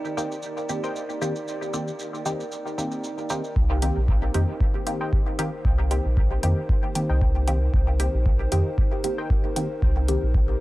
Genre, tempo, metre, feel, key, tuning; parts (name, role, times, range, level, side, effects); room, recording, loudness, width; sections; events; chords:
dub techno; 115 BPM; 4/4; swing 54% on 16ths; C minor; A4 = 443 Hz
dark analog pad; sustained chords; 0.0-10.6 s; Eb4 to D5; -33 LUFS; equal; chorus, sidechain pumping
metallic inharmonic drone; texture; 0.0-3.6 s; Eb4; -42 LUFS; right 2 dB
maracas; percussion; 0.1-3.5 s; -39 LUFS; right 3 dB
filtered dub chord stab; riff; 0.2-9.4 s; Bb4 to G5; -38 LUFS; left 2 dB; chorus, sidechain pumping, dub echo
filtered dub chord stab; stabs; 0.2-10.3 s; Eb3 to G4; -29 LUFS; equal; chorus, phaser, sidechain pumping, dub echo
soft dub sub bass; bass; 3.6-10.6 s; Bb1 to F2; -23 LUFS; equal; sidechain pumping
electronic kick drum; drums; 3.6-10.5 s; -22 LUFS; equal; small room ambience
electronic hi-hat; drums; 3.8-10.2 s; -33 LUFS; left 1 dB; small room ambience
little or no reverb; dry, gritty hardware recording, cassette tape; -22 LUFS; side -18 dB against mid
0.0-3.6 A section; 3.6-10.6 B section
filter sweep on analog synth pad 0.0-3.6; filter sweep on synth stab 3.6-10.6
0.0 Cm7